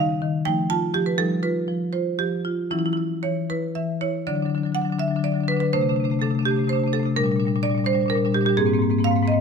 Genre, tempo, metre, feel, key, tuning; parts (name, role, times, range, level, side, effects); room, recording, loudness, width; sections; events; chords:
classical, contemporary piece for solo marimba; 76-86 BPM (dotted quarters); 6/8; rubato; A4 = 440 Hz
marimba with medium hard mallets; solo; 0.0-9.4 s; G#2 to A5; -20 LUFS; equal
moderate stone room reverb, RT60 1.3 s; close, detailed microphones; -20 LUFS; side -6 dB against mid
0.0-4.3 A section; 4.3-9.4 B section
0.5 F7; 1.2 Fsus2; 2.7 Esus2; 4.3 D; 5.7 Csus2; 7.2 Bb6; 8.6 G#add9